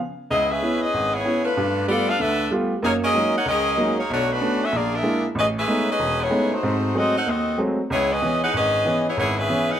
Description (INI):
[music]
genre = jazz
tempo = 189 BPM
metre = 4/4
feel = swing 62% on 8ths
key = C# minor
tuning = A4 = 440 Hz
[part]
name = bright saxophone section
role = melody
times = 0.3-9.8 s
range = A3 to F#5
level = -21 LUFS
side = left 1 dB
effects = plate reverb
[part]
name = clear baby grand piano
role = accompaniment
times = 0.3-9.7 s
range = E1 to F4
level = -23 LUFS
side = right 1 dB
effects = none
[sound]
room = moderate club reverb, RT60 0.8 s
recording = none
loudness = -19 LUFS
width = side -10 dB against mid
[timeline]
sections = 0.3-9.8 A section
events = none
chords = 0.3 C#m7; 1.6 G9; 2.8 F#69; 4.1 Bm9; 4.7 A#7#11; 5.4 Amaj9#11; 6.6 G#7b9; 7.9 C#m7